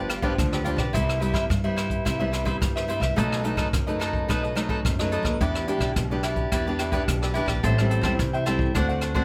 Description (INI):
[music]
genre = samba and choro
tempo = 108 BPM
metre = 4/4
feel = straight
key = unclear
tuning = A4 = 436 Hz
[part]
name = cavaquinho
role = accompaniment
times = 0.0-9.2 s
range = D4 to G5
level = -31 LUFS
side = equal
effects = none
[part]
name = nylon-string guitar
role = accompaniment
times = 0.0-9.2 s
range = F#2 to G4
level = -30 LUFS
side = equal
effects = none
[part]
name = upright bass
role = bass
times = 0.0-9.2 s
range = G1 to G2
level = -31 LUFS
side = equal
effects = none
[part]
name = jazz brush drum kit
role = drums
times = 0.1-9.2 s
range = hi-hat, kick drum, rim click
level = -30 LUFS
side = equal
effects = none
[sound]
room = moderate studio reverb, RT60 0.6 s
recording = none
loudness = -25 LUFS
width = mono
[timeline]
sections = 0.0-9.2 A section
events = none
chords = 0.0 G7; 0.9 Cmaj7; 3.2 B7; 5.4 Em7; 7.6 Am7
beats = 0.39 | 0.94 1.50 2.06 2.62 | 3.17 3.73 4.29 4.85 | 5.40 5.96 6.52 7.08 | 7.63 8.19 8.75